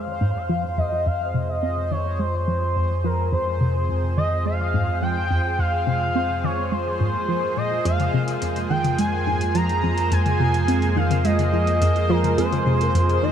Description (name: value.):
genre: ambient, sequencer-driven space music.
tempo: 106 BPM.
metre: 4/4.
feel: straight.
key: F minor.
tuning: A4 = 440 Hz.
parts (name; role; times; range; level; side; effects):
pulse-width lead; melody; 0.0-13.3 s; Bb4 to Bb5; -25 LUFS; left 1 dB; chorus, ping-pong delay.
lush unison pad; sustained chords; 0.0-13.3 s; F3 to Ab4; -28 LUFS; right 3 dB; chorus.
tight sequenced synth; riff; 0.0-13.3 s; F2 to C4; -24 LUFS; equal; chorus, ping-pong delay.
round analog bass; bass; 0.0-13.3 s; F2; -25 LUFS; equal; none.
bubbling stepped-filter texture; texture; 0.0-13.3 s; C5; -34 LUFS; right 1 dB; chorus, built-in reverb.
soft vintage rhythm box; percussion; 7.9-13.2 s; hi-hat, toms; -30 LUFS; left 7 dB; overdrive, ping-pong delay.
room: moderate plate reverb, RT60 2.6 s.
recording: echo-heavy mix.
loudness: -19 LUFS.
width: side -9 dB against mid.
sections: 0.0-13.3 A section.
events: fade-in on analog synth pad 0.0-13.3; filter sweep on synth arpeggio sound 0.0-13.3.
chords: 0.0 Fm.